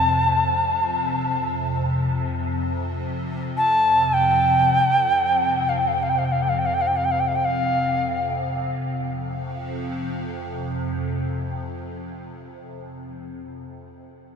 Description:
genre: world meditative, free-time meditation music.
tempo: free time.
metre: none.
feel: none.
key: F major pentatonic.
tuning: A4 = 440 Hz.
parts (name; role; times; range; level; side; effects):
reedy Native American-style cedar flute; melody; 0.0-8.2 s; F5 to A5; -21 LUFS; equal; ping-pong delay.
evolving wavetable pad; drone; 0.0-13.2 s; F2 to C3; -26 LUFS; left 1 dB; ensemble chorus, built-in reverb, phaser.
room: wet huge ambient reverb, RT60 8.2 s.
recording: none.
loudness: -20 LUFS.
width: side -6 dB against mid.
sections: 0.0-8.7 A section; 8.7-12.4 B section.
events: none.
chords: none.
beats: free time.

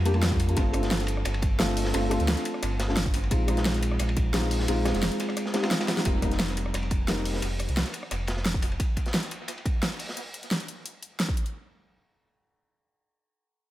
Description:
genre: liquid drum and bass.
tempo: 175 BPM.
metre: 4/4.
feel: straight.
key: unclear.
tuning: A4 = 438 Hz.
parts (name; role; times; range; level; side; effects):
felt-muted upright piano; accompaniment; 0.0-7.4 s; G3 to G4; -29 LUFS; left 1 dB; tape echo.
sub bass with octave; bass; 0.0-8.8 s; F1 to F2; -28 LUFS; equal; none.
crunchy breakbeat drum kit; drums; 0.1-10.2 s; hi-hat, ride cymbal, snare drum; -34 LUFS; equal; high-pass filter on cymbals, studio reverb, high-pass filter on hats, high-pass filter on snare, high-pass filter on room, tape echo.
pop drum kit; drums; 0.1-11.5 s; hi-hat, rim click, snare drum; -30 LUFS; equal; studio reverb.
electronic kick drum; drums; 0.3-11.4 s; none; -27 LUFS; equal; studio reverb.
room: light reverb, studio reverb.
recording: echo-heavy mix.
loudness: -24 LUFS.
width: side -14 dB against mid.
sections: 0.0-6.1 A section; 6.1-11.5 B section; 11.5-13.7 C section.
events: drop 0.0-6.1; drum fill 5.9.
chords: 0.0 C9sus4 (rootless); 0.6 G9sus4; 3.3 Bb9sus4; 6.1 F9sus4; 8.8 N.C..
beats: 0.23 | 0.57 0.91 1.25 1.60 | 1.94 2.28 2.63 2.97 | 3.31 3.65 4.00 4.34 | 4.68 5.03 5.37 5.71 | 6.05 6.40 6.74 7.08 | 7.43 7.77 8.11 8.46 | 8.80 9.14 9.48 9.83 | 10.17 10.51 10.86 11.20.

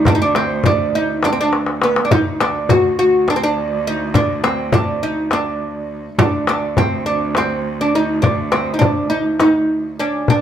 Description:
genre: Turkish makam ensemble.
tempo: 206 BPM (eighths).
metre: 7/8.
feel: straight.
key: D makam hicaz.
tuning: A4 = 441 Hz.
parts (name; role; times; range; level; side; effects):
oud; melody; 0.0-10.4 s; B3-40c to F#4; -17 LUFS; right 1 dB; none.
clear cello; drone; 0.0-10.3 s; D2; -26 LUFS; right 2 dB; none.
darbuka; percussion; 0.1-10.4 s; none; -19 LUFS; left 4 dB; none.
frame drum; percussion; 0.1-9.5 s; none; -20 LUFS; right 1 dB; none.
room: light reverb.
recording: band playing live in one room.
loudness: -14 LUFS.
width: side -9 dB against mid.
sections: 0.0-10.3 A section.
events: drum fill 1.5-2.1.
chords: none.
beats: | 0.06 0.35 0.65 0.94 1.23 1.52 1.82 | 2.11 2.40 2.69 2.98 3.27 3.57 3.86 | 4.15 4.44 4.73 5.02 5.32 5.61 5.90 | 6.19 6.48 6.77 7.07 7.36 7.65 7.94 | 8.23 8.53 8.82 9.11 9.40 9.69 9.99 | 10.28.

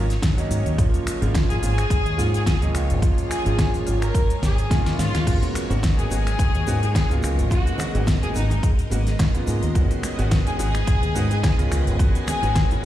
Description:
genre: nu-disco, nu disco.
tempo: 107 BPM.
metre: 4/4.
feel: swing 55% on 16ths.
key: G# dorian.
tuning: A4 = 440 Hz.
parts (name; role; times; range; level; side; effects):
clear concert grand piano; accompaniment; 0.0-12.8 s; C#3 to F#4; -29 LUFS; right 2 dB; sidechain pumping, ping-pong delay.
string machine, full ensemble; sustained chords; 0.0-12.8 s; F#3 to G#5; -32 LUFS; equal; ensemble chorus, sidechain pumping.
fingered electric bass with an envelope filter; bass; 0.0-12.8 s; G#1 to G#2; -22 LUFS; equal; sidechain pumping.
pop drum kit; drums; 0.1-12.8 s; crash cymbal, finger snaps, hi-hat, shaker, snare drum; -28 LUFS; left 1 dB; none.
electronic kick drum; drums; 0.2-12.7 s; none; -21 LUFS; equal; none.
warm symphonic violin section; melody; 1.5-12.5 s; D#4 to A#4; -29 LUFS; left 3 dB; ping-pong delay.
cabasa, bongos and congas; percussion; 5.3-12.8 s; none; -35 LUFS; right 2 dB; none.
room: little or no reverb.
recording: played on a big sound system in a bare room, large studio reverb.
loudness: -19 LUFS.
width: side -13 dB against mid.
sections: 0.0-12.8 A section.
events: drum fill 4.4-5.3.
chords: 0.0 D#m7/G#; 0.8 A#m7/G#; 5.3 G#m11; 9.8 C#9sus4/G#.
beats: 0.22 | 0.78 1.34 1.90 2.46 | 3.02 3.59 4.15 4.71 | 5.27 5.83 6.39 6.95 | 7.51 8.07 8.63 9.19 | 9.75 10.31 10.88 11.44 | 12.00 12.56.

